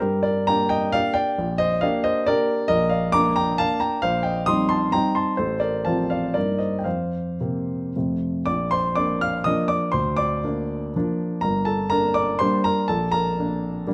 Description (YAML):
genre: classical, romantic triple-time dance for piano with dotted rhythms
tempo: 104-144 BPM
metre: 3/4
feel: rubato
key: Bb major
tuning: A4 = 439 Hz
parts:
  - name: dark grand piano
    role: solo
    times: 0.0-13.9 s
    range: G1 to F6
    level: -23 LUFS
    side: equal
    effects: none
room: moderate recital hall reverb, RT60 1.3 s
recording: close, detailed microphones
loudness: -23 LUFS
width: mono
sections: 0.0-8.5 A section; 8.5-13.9 B section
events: none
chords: 0.0 Gm; 1.4 Gm/Bb; 2.7 Bb; 4.0 Cm7/Bb; 5.4 F/A; 6.4 Eb/G; 6.9 Fsus4; 8.0 F; 8.5 Bb; 9.9 Bb/D; 11.4 Gm; 12.9 Gm/Bb (rootless)